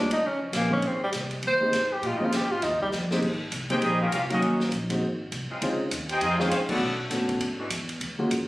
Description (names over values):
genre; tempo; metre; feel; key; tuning
jazz, big band swing; 201 BPM; 4/4; swing 60% on 8ths; Ab major; A4 = 441 Hz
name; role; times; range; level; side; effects
breathy tenor saxophone; melody; 0.0-2.9 s; F3 to C5; -25 LUFS; equal; none
warm grand piano; accompaniment; 0.0-8.3 s; Gb3 to F5; -28 LUFS; equal; none
upright bass; bass; 0.0-8.5 s; Ab1 to B2; -33 LUFS; equal; none
swinging big-band drum kit; drums; 0.1-8.4 s; crash cymbal, hi-hat, kick drum, ride cymbal, snare drum; -33 LUFS; equal; none
mellow saxophone section; sustained chords; 0.5-7.7 s; Db3 to Bb4; -37 LUFS; equal; none
clear trumpet section; melody; 3.7-7.0 s; Cb4 to G5; -27 LUFS; equal; none
muted trombone section; second line; 3.7-7.0 s; Gb3 to G4; -32 LUFS; equal; none
room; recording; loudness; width
moderate echo chamber reverb, RT60 1.4 s; recorded on a phone in the room, studio reverb; -24 LUFS; side -18 dB against mid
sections
0.0-3.2 A section; 3.2-8.5 B section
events
tenor saxophone solo 0.0-3.2; drum fill 2.9; band accent 6.7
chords
0.0 Eb7; 0.8 Abmaj7; 2.0 Bbm7; 2.6 Eb69; 3.2 Abmaj7; 4.4 Ebm7; 5.0 Ab; 5.6 Dbmaj7; 6.8 Bm7; 7.4 E9